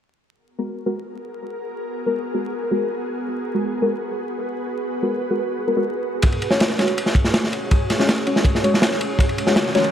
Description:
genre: drum and bass, jungle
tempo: 162 BPM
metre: 4/4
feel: straight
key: G# minor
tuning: A4 = 440 Hz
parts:
  - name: ethereal airy pad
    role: sustained chords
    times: 1.1-9.9 s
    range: G#3 to C#5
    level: -26 LUFS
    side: right 1 dB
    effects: ensemble chorus, built-in reverb
  - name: deep mellow chord stab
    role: stabs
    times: 0.6-9.8 s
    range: G#3 to C#5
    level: -23 LUFS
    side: left 1 dB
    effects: chorus, cassette tape, dub echo
  - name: crunchy breakbeat drum kit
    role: drums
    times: 6.2-9.9 s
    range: kick drum, ride cymbal, snare drum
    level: -18 LUFS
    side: equal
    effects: none
  - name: riser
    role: sound effects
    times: 9.4-9.9 s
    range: none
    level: -30 LUFS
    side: right 1 dB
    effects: none
room: light reverb, studio reverb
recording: vinyl crackle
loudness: -19 LUFS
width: side -9 dB against mid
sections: 0.3-9.9 A section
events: filter sweep on synth stab 0.3-9.9; riser 9.4-9.9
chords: 0.3 G#m9; 6.2 F#sus2/G#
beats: | 0.30 0.68 1.05 1.42 | 1.79 2.16 2.53 2.90 | 3.27 3.64 4.01 4.38 | 4.75 5.12 5.49 5.86 | 6.23 6.60 6.97 7.34 | 7.71 8.08 8.45 8.82 | 9.19 9.56

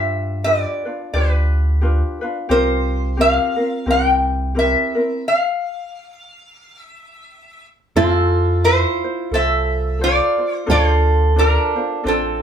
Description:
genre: Hawaiian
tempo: 88 BPM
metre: 4/4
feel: swing 58% on 8ths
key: F major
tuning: A4 = 441 Hz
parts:
  - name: lap resonator guitar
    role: melody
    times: 0.0-12.4 s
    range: C4 to G5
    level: -19 LUFS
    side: equal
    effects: none
  - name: ukulele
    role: accompaniment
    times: 0.0-12.4 s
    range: C4 to C5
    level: -23 LUFS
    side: left 1 dB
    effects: none
  - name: pure sine sub bass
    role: bass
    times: 0.0-12.4 s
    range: A1 to G2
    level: -19 LUFS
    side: equal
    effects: none
  - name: fingerpicked steel-string acoustic guitar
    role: second line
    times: 8.0-12.4 s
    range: F4 to A4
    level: -22 LUFS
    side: right 2 dB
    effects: none
room: wet studio reverb, RT60 0.6 s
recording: band playing live in one room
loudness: -15 LUFS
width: side -8 dB against mid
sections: 0.0-8.0 A section; 8.0-12.4 A section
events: stop 5.2-8.0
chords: 0.0 G7; 2.5 C7sus4; 3.9 C7; 5.2 N.C.; 8.0 Fmaj7; 10.7 Dm7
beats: 0.45 1.13 1.81 | 2.50 3.18 3.87 4.55 | 5.23 5.92 6.60 7.28 | 7.96 8.65 9.33 10.01 | 10.69 11.38 12.06

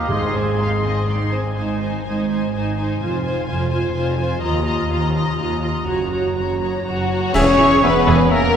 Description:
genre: cinematic, heroic adventure film score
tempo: 125 BPM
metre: 3/4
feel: straight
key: unclear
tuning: A4 = 440 Hz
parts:
  - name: warm symphonic violin section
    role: melody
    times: 0.0-8.6 s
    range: Gb4 to C6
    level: -27 LUFS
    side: left 4 dB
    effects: none
  - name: clear clarinet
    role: second line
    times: 0.0-1.1, 7.3-8.6 s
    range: Ab4 to E5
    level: -26 LUFS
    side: right 1 dB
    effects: none
  - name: concert flute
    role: second line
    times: 0.0-1.3, 6.9-8.6 s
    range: Gb5 to C#6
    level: -23 LUFS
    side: equal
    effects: none
  - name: mellow cor anglais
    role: second line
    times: 0.0-1.3, 7.3-8.4 s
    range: Eb5 to G#5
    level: -29 LUFS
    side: right 2 dB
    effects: none
  - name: warm studio violin section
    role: second line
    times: 0.0-8.6 s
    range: Gb4 to F5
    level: -26 LUFS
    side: left 2 dB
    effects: none
  - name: warm symphonic viola section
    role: accompaniment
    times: 0.0-8.3 s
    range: B3 to G#4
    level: -25 LUFS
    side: right 2 dB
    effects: none
  - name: rich symphonic cello section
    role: bass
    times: 0.0-8.2 s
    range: Eb2 to Ab2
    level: -24 LUFS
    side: right 2 dB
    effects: none
  - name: rich symphonic double bass section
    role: bass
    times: 0.0-8.6 s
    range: E1 to Eb2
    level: -24 LUFS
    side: equal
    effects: none
  - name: dark French horn section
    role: sustained chords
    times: 0.1-0.3, 6.8-8.6 s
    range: Gb3 to Eb4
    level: -20 LUFS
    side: left 1 dB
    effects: none
  - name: timpani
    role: percussion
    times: 0.1-0.8 s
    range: none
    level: barely audible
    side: none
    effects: none
  - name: cymbal swell, clash cymbals and concert bass drum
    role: percussion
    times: 4.4-8.3 s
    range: none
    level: -25 LUFS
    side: equal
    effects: none
  - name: clear tuba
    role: bass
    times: 7.4-8.2 s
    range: E1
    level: -25 LUFS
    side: right 2 dB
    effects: none
room: wet cathedral reverb, RT60 4.9 s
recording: recorded in a church or concert hall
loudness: -16 LUFS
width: side -8 dB against mid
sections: 0.0-1.6 A section; 1.6-7.3 B section; 7.3-8.6 C section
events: band accent 7.3-7.8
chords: 0.1 Ab; 3.0 Fm; 4.4 Ebsus2; 5.9 Gb; 7.3 E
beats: | 0.09 0.59 1.08 | 1.57 2.05 2.53 | 3.00 3.48 3.95 | 4.42 4.90 5.38 | 5.87 6.36 6.85 | 7.35 7.83 8.31

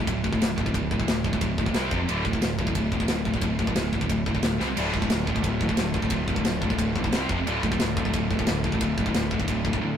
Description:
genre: heavy metal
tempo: 178 BPM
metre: 4/4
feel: straight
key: D minor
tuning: A4 = 441 Hz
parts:
  - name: heavy high-gain guitar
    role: riff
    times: 0.0-10.0 s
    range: D2 to C4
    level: -30 LUFS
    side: left 4 dB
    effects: distortion
  - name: scooped high-gain guitar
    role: riff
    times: 0.0-10.0 s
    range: D2 to C4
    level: -29 LUFS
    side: right 3 dB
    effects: distortion
  - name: growling picked electric bass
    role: bass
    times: 0.0-9.8 s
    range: D1 to C2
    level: -30 LUFS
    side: equal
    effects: overdrive
  - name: tight metal drum kit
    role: drums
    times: 0.1-9.8 s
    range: crash cymbal, kick drum, ride cymbal, snare drum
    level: -28 LUFS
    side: equal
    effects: none
  - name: sludgy distorted guitar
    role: riff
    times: 4.8-10.0 s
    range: D2 to F4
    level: -33 LUFS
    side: left 1 dB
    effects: overdrive
room: moderate stone room reverb, RT60 0.9 s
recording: rough rehearsal-room recording, tube saturation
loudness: -23 LUFS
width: side -8 dB against mid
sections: 0.0-10.0 A section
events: drum fill 4.6; break 9.8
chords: 0.0 D5; 1.8 C5; 1.9 F5; 2.1 D5; 4.6 C5; 4.8 Dm; 7.1 C5; 7.3 F5; 7.5 Dm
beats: 0.08 0.42 | 0.75 1.08 1.42 1.75 | 2.09 2.42 2.76 3.10 | 3.43 3.77 4.10 4.44 | 4.78 5.11 5.45 5.79 | 6.12 6.46 6.80 7.13 | 7.47 7.81 8.14 8.48 | 8.81 9.15 9.49 9.82

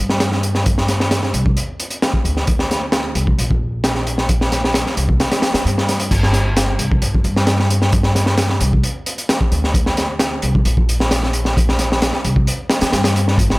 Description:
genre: breakbeat, breaks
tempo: 132 BPM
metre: 4/4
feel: straight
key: G minor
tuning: A4 = 439 Hz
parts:
  - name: upright bass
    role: bass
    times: 0.0-13.6 s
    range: G1 to G2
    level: -19 LUFS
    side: equal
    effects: none
  - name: crunchy breakbeat drum kit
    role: drums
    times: 0.1-13.6 s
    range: crash cymbal, hi-hat, kick drum, snare drum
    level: -16 LUFS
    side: equal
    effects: none
room: little or no reverb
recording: none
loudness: -14 LUFS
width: side -22 dB against mid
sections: 0.0-6.1 A section; 6.1-13.6 B section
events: kick drops out 5.2-6.1; drop 6.1-13.6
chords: none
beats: 0.20 | 0.66 1.11 1.57 2.02 | 2.48 2.93 3.38 3.84 | 4.29 4.75 5.20 5.66 | 6.11 6.57 7.02 7.47 | 7.93 8.38 8.84 9.29 | 9.75 10.20 10.66 11.11 | 11.57 12.02 12.47 12.93 | 13.38

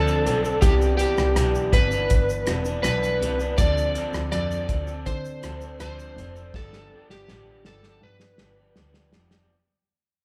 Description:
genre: indie pop, bedroom pop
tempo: 81 BPM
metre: 4/4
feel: straight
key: unclear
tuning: A4 = 441 Hz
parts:
  - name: electric slide guitar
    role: melody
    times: 0.0-9.1 s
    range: G4 to D5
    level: -28 LUFS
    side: equal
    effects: none
  - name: electric guitar through a small old amp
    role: accompaniment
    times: 0.0-9.5 s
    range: G2 to A4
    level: -32 LUFS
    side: equal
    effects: vibrato effect
  - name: rich double bass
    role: bass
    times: 0.0-9.3 s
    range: E1 to D3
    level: -29 LUFS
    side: equal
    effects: none
  - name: cloth-damped thuddy drum kit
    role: drums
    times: 0.1-9.5 s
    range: hi-hat, kick drum, rim click, shaker, snare drum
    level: -26 LUFS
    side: equal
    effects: none
room: moderate large studio reverb, RT60 1.1 s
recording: band playing live in one room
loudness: -23 LUFS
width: mono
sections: 0.0-9.5 A section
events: fade-out 0.0-9.5; drum fill 6.5-9.5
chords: 0.0 Dm7; 0.6 Cmaj9; 3.6 Dm7; 6.5 G7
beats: | 0.62 1.36 2.10 2.84 | 3.58 4.32 5.06 5.80 | 6.54 7.28 8.02 8.76

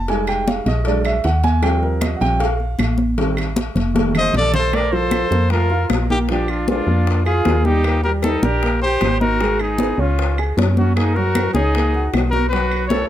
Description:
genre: Afro-Cuban jazz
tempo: 154 BPM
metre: 4/4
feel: straight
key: unclear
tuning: A4 = 444 Hz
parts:
  - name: warm grand piano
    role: accompaniment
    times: 0.0-13.1 s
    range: Eb3 to Ab5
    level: -23 LUFS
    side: right 2 dB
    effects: none
  - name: woody FM bass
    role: bass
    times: 0.0-13.0 s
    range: F1 to Gb2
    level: -20 LUFS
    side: equal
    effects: none
  - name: congas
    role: percussion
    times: 0.1-13.1 s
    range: none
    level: -23 LUFS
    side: left 1 dB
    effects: none
  - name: cowbell and bongos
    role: percussion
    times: 0.1-13.1 s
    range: none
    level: -27 LUFS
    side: left 4 dB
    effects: none
  - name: claves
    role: percussion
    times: 0.3-12.9 s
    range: none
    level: -32 LUFS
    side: right 4 dB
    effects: none
  - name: warm trumpet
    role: melody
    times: 4.2-13.1 s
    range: F4 to Eb5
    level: -22 LUFS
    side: left 3 dB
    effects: plate reverb
  - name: bright reedy silver concert flute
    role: second line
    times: 4.2-13.1 s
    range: Db4 to C5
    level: -24 LUFS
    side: right 3 dB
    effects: tape echo
room: light reverb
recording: none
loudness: -15 LUFS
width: side -12 dB against mid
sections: 0.0-4.7 A section; 4.7-13.1 B section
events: grand piano solo 0.0-4.7; drum fill 3.8-4.7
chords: 0.1 Fm7; 0.9 Bbaug7; 1.6 Eb69; 3.2 Am7b5; 4.0 F7; 4.7 Bb5; 6.3 Bb7; 7.8 Ebmaj7; 9.4 Abm; 10.2 Db5; 11.0 Gb69; 12.5 B7(no3)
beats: | 0.09 0.47 0.86 1.25 | 1.64 2.02 2.41 2.80 | 3.18 3.57 3.96 4.34 | 4.73 5.12 5.51 5.90 | 6.29 6.68 7.07 7.46 | 7.85 8.23 8.62 9.01 | 9.40 9.79 10.18 10.57 | 10.96 11.35 11.74 12.13 | 12.52 12.91

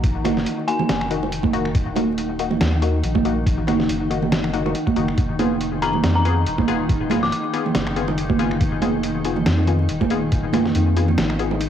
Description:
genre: deep dubstep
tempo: 140 BPM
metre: 4/4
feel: swing 56% on 16ths, half-time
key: unclear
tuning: A4 = 440 Hz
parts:
  - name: granular cloud pad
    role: sustained chords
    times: 0.0-11.7 s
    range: Eb3 to Eb4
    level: -27 LUFS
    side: left 2 dB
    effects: built-in reverb, cassette tape
  - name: soft dub sub bass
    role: bass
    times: 0.0-11.7 s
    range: Eb1 to F2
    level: -24 LUFS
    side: equal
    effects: none
  - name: electronic kick drum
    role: drums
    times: 0.0-10.4 s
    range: none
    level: -22 LUFS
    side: equal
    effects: cassette tape
  - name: trip hop sampler-style drum kit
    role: drums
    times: 0.0-11.7 s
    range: finger snaps, hi-hat, snare drum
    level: -26 LUFS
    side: equal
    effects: cassette tape
  - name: filtered dub chord stab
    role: stabs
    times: 0.2-11.6 s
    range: Bb3 to Ab4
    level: -26 LUFS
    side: left 10 dB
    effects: chorus, cassette tape, dub echo
  - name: bongos and congas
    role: percussion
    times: 0.2-11.6 s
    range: none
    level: -24 LUFS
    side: right 7 dB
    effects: dub echo
  - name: dark detuned synth bell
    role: melody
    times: 0.7-1.1, 5.8-7.4 s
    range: Ab5 to D6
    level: -27 LUFS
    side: left 2 dB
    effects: chorus, cassette tape, dub echo
room: light reverb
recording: home recording on cassette, vinyl crackle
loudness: -18 LUFS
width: side -9 dB against mid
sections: 0.0-11.7 A section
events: none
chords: 0.0 Ebm; 5.2 Fdim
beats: | 0.04 0.46 0.89 1.32 | 1.75 2.18 2.61 3.04 | 3.46 3.89 4.32 4.75 | 5.18 5.61 6.04 6.46 | 6.89 7.32 7.75 8.18 | 8.61 9.04 9.46 9.89 | 10.32 10.75 11.18 11.61

